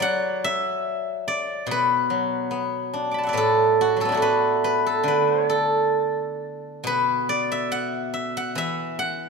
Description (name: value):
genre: chinese traditional, Chinese solo plucked strings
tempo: 71 BPM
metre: 4/4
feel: rubato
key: D gong mode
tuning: A4 = 439 Hz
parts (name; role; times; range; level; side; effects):
- steel-string zither; solo; 0.0-9.3 s; A2 to D6; -21 LUFS; equal; none
room: light reverb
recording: minimal, uncompressed stereo recording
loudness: -20 LUFS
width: side -4 dB against mid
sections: 0.0-6.9 A section; 6.9-9.3 B section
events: none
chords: none